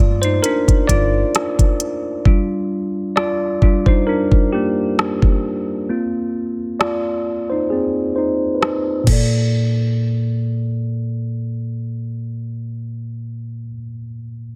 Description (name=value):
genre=contemporary R&B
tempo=66 BPM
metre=4/4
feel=swing 54% on 16ths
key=Bb major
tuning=A4 = 437 Hz
part: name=bell-like tine electric piano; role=accompaniment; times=0.0-14.6 s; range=Bb2 to D5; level=-21 LUFS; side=equal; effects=low-pass filter
part: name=solid FM bass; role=bass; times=0.0-1.2 s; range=G1 to G2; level=-21 LUFS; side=equal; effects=none
part: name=smooth R&B drum kit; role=drums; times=0.2-9.3 s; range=crash cymbal, hi-hat, kick drum, rim click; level=-18 LUFS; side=equal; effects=none
room=light reverb, digital ambience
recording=none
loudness=-19 LUFS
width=mono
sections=0.0-9.5 A section; 9.5-13.2 B section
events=tine electric piano solo 0.0-9.5; filter sweep on tine electric piano 0.0-9.5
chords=0.0 Gm7; 2.3 Ebmaj9; 5.9 Bb9; 9.1 Bbmaj7